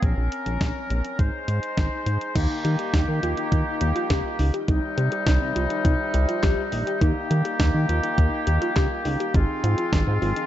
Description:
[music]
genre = synth-pop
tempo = 103 BPM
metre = 4/4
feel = straight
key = unclear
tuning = A4 = 440 Hz
[part]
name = clear woodwind section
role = sustained chords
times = 0.0-10.5 s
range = C3 to C5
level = -27 LUFS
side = equal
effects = shimmer reverb
[part]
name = chorused synth bass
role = bass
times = 0.0-10.3 s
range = Ab1 to Eb3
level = -23 LUFS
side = equal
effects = none
[part]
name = clean 12-bit digital drum machine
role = drums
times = 0.0-10.5 s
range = crash cymbal, handclaps, hi-hat, kick drum, snare drum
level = -24 LUFS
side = equal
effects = none
[part]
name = warbly dusty pluck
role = arpeggios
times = 2.4-10.4 s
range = Eb4 to G4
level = -28 LUFS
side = left 1 dB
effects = chorus, analog delay, shimmer reverb
[sound]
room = moderate plate reverb, RT60 2.0 s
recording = dark, warm production, nothing above 7.8 kHz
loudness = -21 LUFS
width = side -12 dB against mid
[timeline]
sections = 0.0-2.4 A section; 2.4-10.5 B section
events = none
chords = 0.0 Bbmadd9; 1.2 Ab; 2.4 Eb; 4.7 Cm; 7.0 Eb; 9.3 Ab6

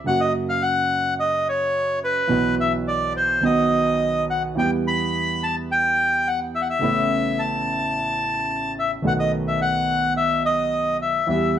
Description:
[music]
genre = tango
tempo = 107 BPM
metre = 4/4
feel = rubato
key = unclear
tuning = A4 = 440 Hz
[part]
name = warm concert grand piano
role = accompaniment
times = 0.0-11.6 s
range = A1 to G4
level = -24 LUFS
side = right 2 dB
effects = none
[part]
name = bandoneon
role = melody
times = 0.1-11.6 s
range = B4 to B5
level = -21 LUFS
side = left 1 dB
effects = none
[sound]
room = moderate club reverb, RT60 0.8 s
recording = none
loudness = -19 LUFS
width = side -10 dB against mid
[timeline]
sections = 0.0-11.6 A section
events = none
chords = 0.1 F#; 2.3 Bsus4; 3.4 B; 4.6 Em; 6.8 Aadd9; 9.0 B7

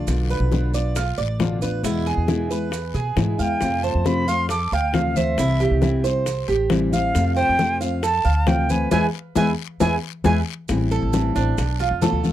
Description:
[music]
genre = latin, Cuban son and guajira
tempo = 136 BPM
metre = 4/4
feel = straight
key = unclear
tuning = A4 = 443 Hz
[part]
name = nylon-string guitar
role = accompaniment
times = 0.0-12.3 s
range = B2 to F4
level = -25 LUFS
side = left 4 dB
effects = none
[part]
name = Cuban tres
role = arpeggios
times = 0.0-12.3 s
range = D4 to F5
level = -26 LUFS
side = right 7 dB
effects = tape echo
[part]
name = upright bass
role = bass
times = 0.0-12.3 s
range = A1 to B2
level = -23 LUFS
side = equal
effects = none
[part]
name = bongos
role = percussion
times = 0.1-12.2 s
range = none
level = -28 LUFS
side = left 6 dB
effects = none
[part]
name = congas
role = percussion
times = 0.1-12.3 s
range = none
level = -26 LUFS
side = left 3 dB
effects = none
[part]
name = guiro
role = percussion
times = 0.1-12.3 s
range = none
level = -38 LUFS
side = left 22 dB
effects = none
[part]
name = maracas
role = percussion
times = 0.1-12.3 s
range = none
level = -39 LUFS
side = right 18 dB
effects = none
[part]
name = jazz flute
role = melody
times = 3.4-10.4 s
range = E5 to D6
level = -23 LUFS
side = equal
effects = none
[sound]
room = little or no reverb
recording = dry, close 1970s-style studio recording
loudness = -18 LUFS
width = side -12 dB against mid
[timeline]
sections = 0.0-10.7 A section; 10.7-12.3 B section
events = band accent 8.9-10.7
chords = 0.1 Bdim; 1.9 E; 3.6 F; 5.4 C; 7.2 F; 8.9 E; 10.7 Am7; 11.6 Bm7b5

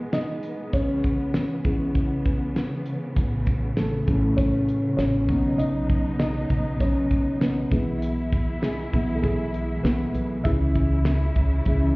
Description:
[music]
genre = piano-driven pop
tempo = 99 BPM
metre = 4/4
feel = straight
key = E major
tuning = A4 = 439 Hz
[part]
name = felt-muted upright piano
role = accompaniment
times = 0.0-12.0 s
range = D#3 to E5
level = -25 LUFS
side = equal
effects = none
[part]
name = warm studio string section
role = sustained chords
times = 0.0-12.0 s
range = B2 to E4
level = -31 LUFS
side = equal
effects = none
[part]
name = damped 70s drum kit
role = drums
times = 0.1-11.8 s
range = hi-hat, kick drum, snare drum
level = -25 LUFS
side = equal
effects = none
[part]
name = upright bass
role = bass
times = 3.2-12.0 s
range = A1 to C#2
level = -25 LUFS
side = equal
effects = none
[sound]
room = light reverb, small room ambience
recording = heard muffled through a wall, stone room reverb, EQ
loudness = -21 LUFS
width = side -24 dB against mid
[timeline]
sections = 0.0-12.0 A section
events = felt piano solo 0.0-12.0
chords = 0.0 E/B; 0.7 C#m; 3.2 A; 5.3 Badd9; 7.7 E/B; 10.4 C#m

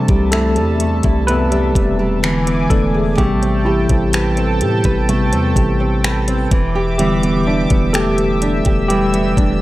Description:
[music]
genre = contemporary R&B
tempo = 63 BPM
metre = 4/4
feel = straight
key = unclear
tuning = A4 = 440 Hz
[part]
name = tine electric piano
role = accompaniment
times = 0.0-9.6 s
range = C3 to B4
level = -18 LUFS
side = left 1 dB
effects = medium stereo tremolo
[part]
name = chorused pulse-width pad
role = sustained chords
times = 0.0-9.6 s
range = G4 to E6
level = -24 LUFS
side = right 1 dB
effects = sidechain pumping
[part]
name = nylon-string guitar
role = arpeggios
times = 0.0-9.6 s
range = C3 to B4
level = -20 LUFS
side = right 2 dB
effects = none
[part]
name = long sustained 808-style bass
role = bass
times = 0.0-9.6 s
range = E1 to A2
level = -20 LUFS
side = equal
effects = none
[part]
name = smooth R&B drum kit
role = drums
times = 0.1-9.6 s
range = finger snaps, hi-hat, kick drum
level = -18 LUFS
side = equal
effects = none
[sound]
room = digital ambience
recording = dry, gritty hardware recording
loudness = -13 LUFS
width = side -17 dB against mid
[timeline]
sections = 0.0-9.6 A section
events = tine electric piano solo 0.0-9.6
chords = 0.0 C6; 2.2 E7; 3.2 Am9; 6.5 Em7

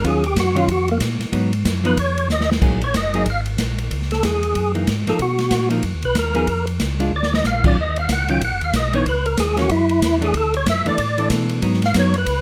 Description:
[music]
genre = soul jazz organ trio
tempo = 187 BPM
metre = 4/4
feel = swing 61% on 8ths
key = F# major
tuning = A4 = 439 Hz
[part]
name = percussive tonewheel organ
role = melody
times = 0.0-12.4 s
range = Bb3 to G5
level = -23 LUFS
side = equal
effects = slow rotary speaker, overdrive, chorus vibrato, plate reverb
[part]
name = hollow-body jazz guitar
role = accompaniment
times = 0.0-12.1 s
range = Eb3 to G#4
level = -24 LUFS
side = equal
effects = none
[part]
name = mellow tonewheel organ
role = bass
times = 0.0-12.4 s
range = F#1 to B2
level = -25 LUFS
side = equal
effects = chorus vibrato, slow rotary speaker
[part]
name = swinging big-band drum kit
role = drums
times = 0.0-12.4 s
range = crash cymbal, hi-hat, kick drum, ride cymbal, snare drum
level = -26 LUFS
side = equal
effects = none
[sound]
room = light reverb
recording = none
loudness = -19 LUFS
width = mono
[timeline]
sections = 0.0-2.6 A section; 2.6-12.4 A section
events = tonewheel organ solo 0.0-12.4; drum fill 2.3-2.6, 7.1-7.4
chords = 0.0 Ebm9; 1.3 Abm7; 2.0 Dbadd9; 2.6 F#69; 3.9 C#m; 4.5 F#13; 5.2 Bmaj7#11; 6.5 C#; 7.1 A#; 7.8 D#m9; 9.1 C#madd9; 9.7 E9; 10.3 Bm7; 11.6 G#m7

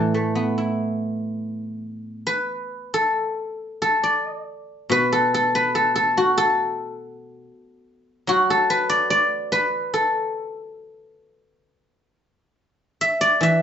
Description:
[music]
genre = chinese traditional, Chinese solo plucked strings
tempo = 70 BPM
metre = 2/4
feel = rubato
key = unclear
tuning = A4 = 440 Hz
[part]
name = guzheng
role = solo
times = 0.0-13.6 s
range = A2 to E5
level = -19 LUFS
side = equal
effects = none
[sound]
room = wet studio reverb, RT60 0.6 s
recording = heard from further back in the room, nothing above 7.8 kHz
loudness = -19 LUFS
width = side -8 dB against mid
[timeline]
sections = 0.0-4.9 A section; 4.9-13.6 B section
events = none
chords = none

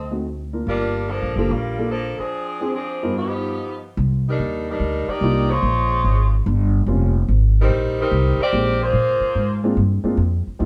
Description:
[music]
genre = jazz, big band swing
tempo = 145 BPM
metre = 4/4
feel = swing 66% on 8ths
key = G minor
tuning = A4 = 439 Hz
[part]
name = clear saxophone section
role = melody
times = 0.0-9.6 s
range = F3 to D5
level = -24 LUFS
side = equal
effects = none
[part]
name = upright bass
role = bass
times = 0.0-10.7 s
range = F1 to Bb2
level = -22 LUFS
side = equal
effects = none
[part]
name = warm baby grand piano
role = accompaniment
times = 0.1-10.7 s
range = G2 to Bb4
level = -26 LUFS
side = equal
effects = none
[sound]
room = moderate studio reverb, RT60 0.8 s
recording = band playing live in one room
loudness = -20 LUFS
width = mono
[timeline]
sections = 0.0-4.0 A section; 4.0-10.7 B section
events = break 2.3-4.0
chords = 0.0 D7b9; 0.7 Gm7; 2.3 Dm7b5; 3.2 G7alt; 4.0 Cm11; 5.6 Bbm9; 6.5 Bbm69; 7.3 Abmaj9; 8.9 Bb7

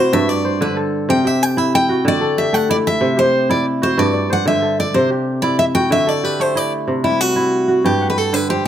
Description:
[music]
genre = west african traditional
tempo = 125 BPM (dotted quarters)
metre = 12/8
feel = straight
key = C lydian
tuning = A4 = 440 Hz
[part]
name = picked steel-string acoustic guitar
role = melody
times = 0.0-8.7 s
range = E4 to G5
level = -17 LUFS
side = equal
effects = plate reverb
[part]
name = kora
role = arpeggios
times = 0.0-8.7 s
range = G2 to F#5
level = -17 LUFS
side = right 1 dB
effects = none
[sound]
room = moderate small room reverb, RT60 0.5 s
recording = none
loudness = -14 LUFS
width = side -10 dB against mid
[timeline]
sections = 0.0-6.9 A section; 6.9-8.7 B section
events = steel-string acoustic guitar solo 0.0-6.9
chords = 0.1 G5; 1.1 C; 2.0 D; 3.0 C; 4.0 G5; 4.9 C; 5.9 D; 6.9 C; 7.8 G5

